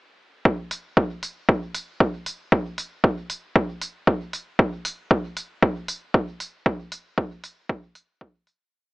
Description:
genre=techno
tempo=116 BPM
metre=4/4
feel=straight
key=none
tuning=none
part: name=electronic kick drum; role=drums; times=0.5-8.3 s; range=none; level=-21 LUFS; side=equal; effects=none
part: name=electronic hi-hat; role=drums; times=0.7-8.6 s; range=none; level=-31 LUFS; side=right 1 dB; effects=none
room=little or no reverb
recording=AM radio sound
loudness=-23 LUFS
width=side -22 dB against mid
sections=0.5-8.7 groove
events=fade-out 6.0-8.7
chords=none

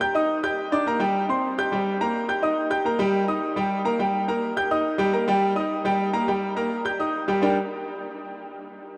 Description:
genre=latin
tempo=210 BPM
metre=4/4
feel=straight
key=G minor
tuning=A4 = 440 Hz
part: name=clear baby grand piano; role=solo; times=0.0-7.6 s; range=G3 to G6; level=-24 LUFS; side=equal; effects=none
room=wet huge ambient reverb, RT60 8.0 s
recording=in a vast, echoing space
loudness=-24 LUFS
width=mono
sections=0.0-2.9 A section; 2.9-7.4 B section; 7.4-8.6 C section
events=none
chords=0.0 Eb; 0.6 Gm; 1.1 C5; 1.7 Gm; 2.3 Eb; 2.9 Eb/G; 4.0 Gm; 4.6 Eb; 5.1 Eb/G; 6.3 Gm; 6.8 Eb; 7.4 Gm

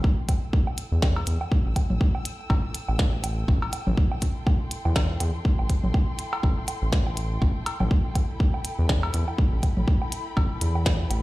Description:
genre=minimal techno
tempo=122 BPM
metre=4/4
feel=swing 57% on 16ths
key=A minor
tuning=A4 = 440 Hz
part: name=electronic kick drum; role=drums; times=0.0-11.0 s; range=none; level=-23 LUFS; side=equal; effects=none
part: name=dark studio string section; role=texture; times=0.0-11.2 s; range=E4 to E6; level=-38 LUFS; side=left 2 dB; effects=sidechain pumping
part: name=minimal click drum kit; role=drums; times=0.3-11.2 s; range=hi-hat, snare drum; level=-30 LUFS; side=equal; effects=none
part: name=woodblock, cowbell and congas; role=percussion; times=0.3-11.2 s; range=none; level=-33 LUFS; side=right 1 dB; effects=tape echo
part: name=round analog bass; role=bass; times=0.9-11.2 s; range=A1 to E2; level=-25 LUFS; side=equal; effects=sidechain pumping
room=digital ambience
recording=played on a big sound system in a bare room, large studio reverb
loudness=-22 LUFS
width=side -18 dB against mid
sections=0.0-11.2 A section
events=fade-in on string section 0.0-11.2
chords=0.0 Am7

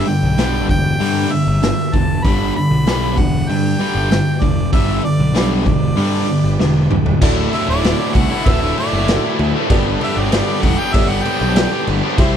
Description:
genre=classic rock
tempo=97 BPM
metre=4/4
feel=straight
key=unclear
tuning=A4 = 442 Hz
part: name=clear harmonica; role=melody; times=0.0-11.9 s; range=D5 to B5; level=-24 LUFS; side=right 1 dB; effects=none
part: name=bright tonewheel organ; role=sustained chords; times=0.0-12.4 s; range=A3 to E5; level=-33 LUFS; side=right 1 dB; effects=none
part: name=cranked stack guitar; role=riff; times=0.0-12.4 s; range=D2 to C5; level=-20 LUFS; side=right 9 dB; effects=overdrive
part: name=distorted electric guitar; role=riff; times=0.0-12.4 s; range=D2 to C5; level=-21 LUFS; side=left 12 dB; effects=overdrive
part: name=fuzz picked electric bass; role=bass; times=0.2-12.4 s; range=D1 to G2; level=-20 LUFS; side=equal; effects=overdrive
part: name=raw garage drum kit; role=drums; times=0.4-12.3 s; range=crash cymbal, hi-hat, kick drum, snare drum, toms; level=-19 LUFS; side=equal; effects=none
part: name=warm upright piano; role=accompaniment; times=7.2-12.4 s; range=E4 to E5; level=-25 LUFS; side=equal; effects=none
room=little or no reverb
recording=none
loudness=-13 LUFS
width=side -8 dB against mid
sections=0.0-7.2 A section; 7.2-12.4 B section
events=drum fill 6.6-7.2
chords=0.0 G; 7.2 Dadd9; 9.7 Gadd9

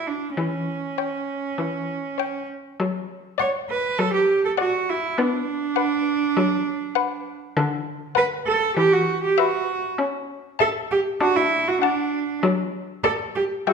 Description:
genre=quick classical-period movement for string quartet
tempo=99 BPM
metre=4/4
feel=rubato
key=D major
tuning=A4 = 440 Hz
part: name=rich violin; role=melody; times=0.0-13.7 s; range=E5 to A5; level=-28 LUFS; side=left 10 dB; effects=none
part: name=warm violin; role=second line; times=0.0-13.7 s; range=B4 to F#5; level=-28 LUFS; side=left 10 dB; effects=none
part: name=rich cello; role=bass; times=0.0-13.7 s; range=C#4 to C#5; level=-22 LUFS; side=right 4 dB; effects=none
part: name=rich viola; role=accompaniment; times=0.4-13.7 s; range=D3 to D4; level=-25 LUFS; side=left 3 dB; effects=none
room=wet recital hall reverb, RT60 1.4 s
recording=minimal, uncompressed stereo recording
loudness=-21 LUFS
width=side -5 dB against mid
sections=0.0-13.7 A section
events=none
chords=0.4 Em6; 2.8 D/F#; 5.2 Bm; 7.6 Bm/D; 8.8 Em; 10.0 A/C#; 11.2 D; 12.4 D/F#

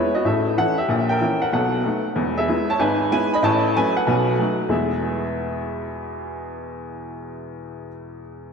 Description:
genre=jazz, stride piano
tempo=188 BPM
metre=4/4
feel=swing 65% on 8ths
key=E major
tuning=A4 = 439 Hz
part: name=bright upright piano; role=solo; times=0.0-8.5 s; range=E1 to B5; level=-20 LUFS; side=equal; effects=ping-pong delay
room=wet lush hall reverb, RT60 2.6 s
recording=dreamy mix soaked in reverb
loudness=-18 LUFS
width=side -6 dB against mid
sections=0.0-4.7 A section; 4.7-7.3 B section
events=none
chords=0.2 A; 0.9 A#dim7; 1.5 B7; 2.2 E; 2.8 E/G#; 3.4 F#m/A; 4.1 B7; 4.7 E

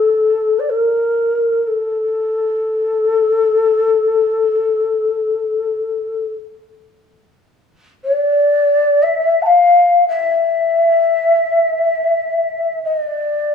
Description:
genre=japanese traditional, Japanese chamber music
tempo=free time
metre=none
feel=none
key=unclear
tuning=A4 = 440 Hz
part: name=mellow hollow shakuhachi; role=solo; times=0.0-13.5 s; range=A4 to A5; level=-13 LUFS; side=left 2 dB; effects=none
room=moderate recital hall reverb, RT60 1.4 s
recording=small room ambience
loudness=-13 LUFS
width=side -6 dB against mid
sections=0.0-13.5 A section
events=none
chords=none

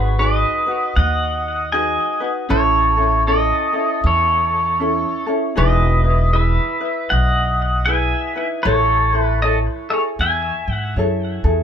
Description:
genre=Hawaiian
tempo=78 BPM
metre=4/4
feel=swing 62% on 8ths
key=unclear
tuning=A4 = 440 Hz
part: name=pedal steel guitar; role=melody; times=0.0-10.9 s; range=G#4 to G#5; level=-18 LUFS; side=equal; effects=ping-pong delay
part: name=ukulele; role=accompaniment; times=0.0-11.6 s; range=C#4 to C#5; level=-23 LUFS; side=equal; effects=none
part: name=upright bass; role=bass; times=0.0-11.6 s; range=E1 to G#2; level=-19 LUFS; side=equal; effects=none
room=light reverb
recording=band playing live in one room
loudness=-15 LUFS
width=side -8 dB against mid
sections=0.0-11.6 A section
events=none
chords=0.0 G#m7; 2.5 A; 5.6 Emaj7; 8.7 Amaj7

